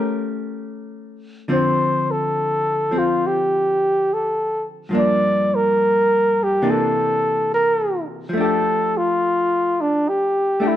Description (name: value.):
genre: jazz ballad.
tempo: 70 BPM.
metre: 4/4.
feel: swing 67% on 8ths.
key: F major.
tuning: A4 = 440 Hz.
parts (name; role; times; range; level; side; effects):
vintage hollow-body jazz guitar; accompaniment; 0.0-10.8 s; G2 to Bb4; -23 LUFS; left 1 dB; none.
warm flugelhorn; melody; 1.5-10.8 s; D4 to D5; -18 LUFS; equal; none.
room: moderate echo chamber reverb, RT60 1.6 s.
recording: dark, warm production.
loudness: -17 LUFS.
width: side -12 dB against mid.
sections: 0.0-10.8 A section.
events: none.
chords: 0.0 A7b9; 1.5 Dm7; 4.9 Gm7; 6.6 C9; 8.3 F69.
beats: 0.61 | 1.48 2.33 3.19 4.05 | 4.91 5.76 6.61 7.47 | 8.32 9.17 10.02.